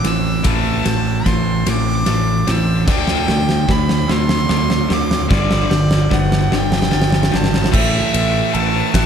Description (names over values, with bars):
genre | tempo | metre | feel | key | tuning
post-rock | 50 BPM (dotted quarters) | 6/8 | straight | A minor | A4 = 445 Hz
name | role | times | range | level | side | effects
clear violin | melody | 0.0-9.1 s | D5 to E6 | -22 LUFS | equal | digital delay
glockenspiel with soft plastic mallets | arpeggios | 0.0-9.1 s | D6 to A6 | -32 LUFS | right 5 dB | digital delay
twelve-string electric guitar | arpeggios | 0.0-7.7 s | A2 to G4 | -30 LUFS | left 3 dB | none
thick fuzz guitar | riff | 0.0-9.1 s | G2 to D4 | -21 LUFS | right 8 dB | distortion
tight distorted guitar | riff | 0.0-9.1 s | G2 to D4 | -22 LUFS | left 12 dB | distortion
growling fingered electric bass | bass | 0.0-9.1 s | G1 to D2 | -21 LUFS | equal | overdrive
huge arena drum kit | drums | 0.0-9.1 s | crash cymbal, kick drum, ride cymbal, snare drum | -19 LUFS | equal | none
room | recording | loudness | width
light reverb, small room reverb | none | -14 LUFS | side -8 dB against mid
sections
0.0-7.7 A section; 7.7-9.1 B section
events
build-up 0.0-7.7; drum fill 0.0-7.7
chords
0.0 Am; 2.9 D7sus4; 5.3 Gadd9; 7.7 A5